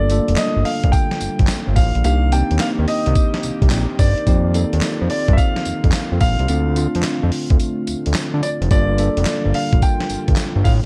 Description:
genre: R&B, new jack swing.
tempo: 108 BPM.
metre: 4/4.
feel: swing 66% on 16ths.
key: G minor.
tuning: A4 = 440 Hz.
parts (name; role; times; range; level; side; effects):
clear baby grand piano; melody; 0.0-10.7 s; D5 to G5; -27 LUFS; equal; none.
bell-like tine electric piano; accompaniment; 0.0-10.9 s; A3 to A4; -27 LUFS; equal; none.
chorused pulse-width pad; sustained chords; 0.0-10.9 s; D3 to G4; -31 LUFS; equal; none.
fat analog bass; bass; 0.0-10.8 s; F1 to D3; -20 LUFS; equal; none.
boom bap sampler-style drum kit; drums; 0.1-10.8 s; handclaps, hi-hat, kick drum, snare drum, tambourine; -21 LUFS; equal; gated reverb.
room: light reverb.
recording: none.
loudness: -18 LUFS.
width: mono.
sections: 0.0-8.7 A section; 8.7-10.9 A section.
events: break 7.6-8.7.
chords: 0.0 Gm7; 2.0 Cm7; 4.3 F7sus4; 6.5 Dm7; 8.7 Gm7.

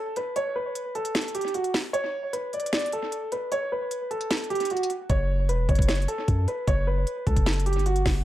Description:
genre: hip hop, trap.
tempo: 152 BPM.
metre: 4/4.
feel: half-time.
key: F# phrygian.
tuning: A4 = 440 Hz.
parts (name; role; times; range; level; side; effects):
dark grand piano; melody; 0.0-8.0 s; F#4 to D5; -28 LUFS; right 1 dB; low-pass filter, analog delay.
trap drum kit; drums; 0.2-8.1 s; hi-hat, kick drum, snare drum; -27 LUFS; equal; analog delay.
long sustained 808-style bass; bass; 5.1-8.2 s; E1 to F#2; -24 LUFS; equal; none.
room: light reverb, digital ambience.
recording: echo-heavy mix.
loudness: -24 LUFS.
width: side -14 dB against mid.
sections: 0.0-8.2 A section.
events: break 0.0-5.1.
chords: 0.0 N.C.; 5.1 F#m.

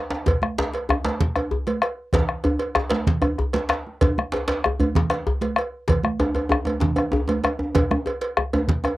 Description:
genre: west african traditional, West African drum ensemble.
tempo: 128 BPM (dotted quarters).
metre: 12/8.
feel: straight.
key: none.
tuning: none.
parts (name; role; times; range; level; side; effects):
djembe; percussion; 0.1-9.0 s; none; -25 LUFS; equal; none.
bombo; percussion; 0.3-9.0 s; none; -22 LUFS; left 1 dB; none.
congas; percussion; 0.3-8.8 s; none; -27 LUFS; right 3 dB; none.
cowbell; percussion; 0.3-9.0 s; none; -28 LUFS; right 2 dB; none.
djembe; percussion; 0.3-8.8 s; none; -28 LUFS; left 2 dB; none.
room: moderate booth ambience, RT60 0.2 s.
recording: home recording on cassette.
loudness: -20 LUFS.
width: side -17 dB against mid.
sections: 0.0-9.0 A section.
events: none.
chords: none.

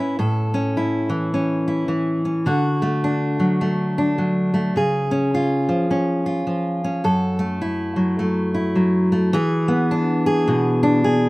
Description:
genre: folk.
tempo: 105 BPM.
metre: 4/4.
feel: swing 62% on 8ths.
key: A major.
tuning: A4 = 440 Hz.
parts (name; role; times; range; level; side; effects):
fingerpicked steel-string acoustic guitar; solo; 0.0-11.3 s; F#2 to B4; -18 LUFS; equal; none.
room: light reverb.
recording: recorded outdoors, with no room sound.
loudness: -18 LUFS.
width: side -21 dB against mid.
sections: 0.2-9.3 A section; 9.3-11.3 B section.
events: none.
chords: 0.2 A; 2.5 D; 4.8 C#; 7.0 F#m7; 9.3 E7.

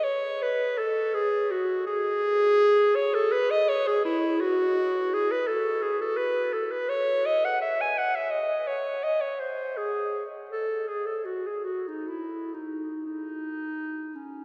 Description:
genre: classical, free, expressive piece for unaccompanied clarinet.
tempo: 53-87 BPM.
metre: 3/4.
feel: rubato.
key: C# minor.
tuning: A4 = 440 Hz.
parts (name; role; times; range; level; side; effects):
clear clarinet; solo; 0.0-14.4 s; C#4 to G#5; -27 LUFS; equal; none.
room: wet cathedral reverb, RT60 7.2 s.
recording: heard from further back in the room.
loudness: -27 LUFS.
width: mono.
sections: 0.0-14.4 A section.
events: none.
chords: none.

